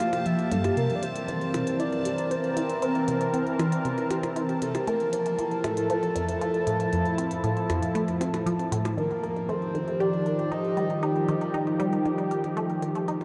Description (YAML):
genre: ambient, sequencer-driven space music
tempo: 117 BPM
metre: 4/4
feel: straight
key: unclear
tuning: A4 = 439 Hz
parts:
  - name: breathy flute-like synth lead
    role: melody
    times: 0.0-12.0 s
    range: G4 to F5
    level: -33 LUFS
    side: equal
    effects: subtle chorus, tape echo
  - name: sweeping resonant pad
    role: sustained chords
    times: 0.0-13.2 s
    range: Eb3 to A5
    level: -30 LUFS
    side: equal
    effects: chorus
  - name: resonant blip pluck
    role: riff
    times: 0.0-13.2 s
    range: F2 to Bb4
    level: -32 LUFS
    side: equal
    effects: phaser, tape echo
  - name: electronic hi-hat and percussion blips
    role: percussion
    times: 0.0-13.2 s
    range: none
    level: -41 LUFS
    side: equal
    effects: tape echo
  - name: bubbling stepped-filter texture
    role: texture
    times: 0.0-9.0 s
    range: A5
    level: -44 LUFS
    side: equal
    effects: chorus, built-in reverb
room: wet huge ambient reverb, RT60 8.1 s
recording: dreamy mix soaked in reverb, cassette tape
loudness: -27 LUFS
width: mono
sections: 0.0-9.0 A section; 9.0-13.2 B section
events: filter sweep on synth arpeggio sound 0.0-9.0; fade-in on drum 9.0-13.2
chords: 0.0 Gm7; 0.8 C7; 4.9 Fmaj7; 9.0 Ebmaj9